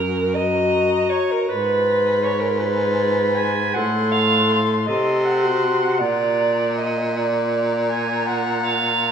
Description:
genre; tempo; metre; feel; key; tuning
classical, lyrical piece for single-reed quartet; 53 BPM (dotted quarters); 12/8; rubato; unclear; A4 = 439 Hz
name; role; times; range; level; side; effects
warm soprano saxophone; melody; 0.0-9.1 s; Bb5 to C6; -27 LUFS; left 7 dB; none
warm alto saxophone; second line; 0.0-9.1 s; Bb4 to Ab5; -21 LUFS; right 2 dB; none
warm clarinet; accompaniment; 0.0-9.1 s; F4 to A4; -26 LUFS; left 3 dB; none
warm baritone saxophone; bass; 0.0-9.1 s; Gb2 to C3; -22 LUFS; equal; none
room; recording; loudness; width
wet concert hall reverb, RT60 2.2 s; small room ambience; -17 LUFS; side -7 dB against mid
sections
0.0-9.1 A section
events
none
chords
0.0 Ebm/Gb; 1.5 Fdim/Ab; 3.8 Am6; 6.0 Bb

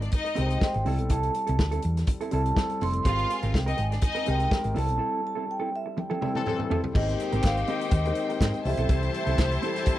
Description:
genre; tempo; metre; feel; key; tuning
disco; 123 BPM; 4/4; straight; C major; A4 = 441 Hz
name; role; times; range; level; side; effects
clear studio string section; second line; 0.0-10.0 s; D4 to A5; -33 LUFS; left 2 dB; none
dark baby grand piano; accompaniment; 0.0-10.0 s; Eb3 to C5; -34 LUFS; left 4 dB; none
mellow electric guitar; accompaniment; 0.0-9.9 s; C4 to Bb4; -35 LUFS; right 5 dB; none
hollow-body short-scale fingered electric bass; bass; 0.0-9.6 s; F1 to Ab2; -27 LUFS; equal; none
warm soul drum kit; drums; 0.0-10.0 s; crash cymbal, hi-hat, kick drum, snare drum, toms; -27 LUFS; equal; none
vibraphone with medium mallets; melody; 0.4-10.0 s; C5 to C6; -31 LUFS; right 2 dB; none
clear horn section; stabs; 6.4-10.0 s; Eb3 to C5; -33 LUFS; left 7 dB; none
group handclap; percussion; 7.4-9.5 s; none; -40 LUFS; right 4 dB; none
room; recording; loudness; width
small room ambience; none; -24 LUFS; side -14 dB against mid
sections
0.0-7.0 A section; 7.0-10.0 B section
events
vibraphone solo 0.0-7.0; break 5.0-7.0; band accent 5.0-7.0; drum fill 6.0-7.0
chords
0.0 Abmaj9; 0.9 C6; 3.1 Abmaj9; 4.8 C6; 7.0 Abmaj9; 8.7 C6

